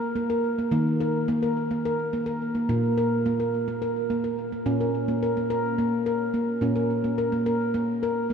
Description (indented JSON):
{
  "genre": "world meditative, meditative tuned percussion",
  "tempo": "214 BPM (eighths)",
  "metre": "7/8",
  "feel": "straight",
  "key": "unclear",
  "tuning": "A4 = 440 Hz",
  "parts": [
    { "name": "handpan", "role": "solo", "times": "0.0-8.3 s", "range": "Bb2 to Bb4", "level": "-23 LUFS", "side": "equal", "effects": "ping-pong delay" }
  ],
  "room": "wet huge ambient reverb, RT60 8.0 s",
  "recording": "in a vast, echoing space",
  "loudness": "-23 LUFS",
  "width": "side -6 dB against mid",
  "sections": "0.0-4.7 A section; 4.7-8.3 B section",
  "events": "none",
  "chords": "0.0 N.C.; 0.7 Eb5; 2.7 N.C.",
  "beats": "0.15 0.43 | 0.72 1.00 1.28 1.56 1.84 2.12 2.40 | 2.68 2.96 3.25 3.53 3.81 4.09 4.37 | 4.65 4.93 5.21 5.49 5.77 6.05 6.33 | 6.62 6.90 7.18 7.46 7.74 8.02 8.30"
}